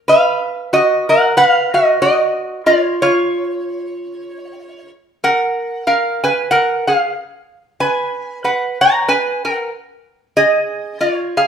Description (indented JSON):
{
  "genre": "hawaiian",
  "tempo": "93 BPM",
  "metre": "4/4",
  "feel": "swing 57% on 8ths",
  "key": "F# major",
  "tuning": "A4 = 440 Hz",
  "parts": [
    { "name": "lap resonator guitar", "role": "solo", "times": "0.1-11.5 s", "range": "E#4 to A#5", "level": "-13 LUFS", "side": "equal", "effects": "none" }
  ],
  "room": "moderate large studio reverb, RT60 1.0 s",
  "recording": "band playing live in one room",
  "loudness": "-13 LUFS",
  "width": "side -7 dB against mid",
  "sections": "0.0-11.5 A section",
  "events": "none",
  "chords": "0.1 B; 2.6 N.C.; 5.2 F#; 7.8 G#m9; 10.3 Fm7",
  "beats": "| 0.05 0.70 1.34 1.99 | 2.63 3.27 3.92 4.56 | 5.20 5.85 6.49 7.13 | 7.78 8.42 9.06 9.70 | 10.35 10.99"
}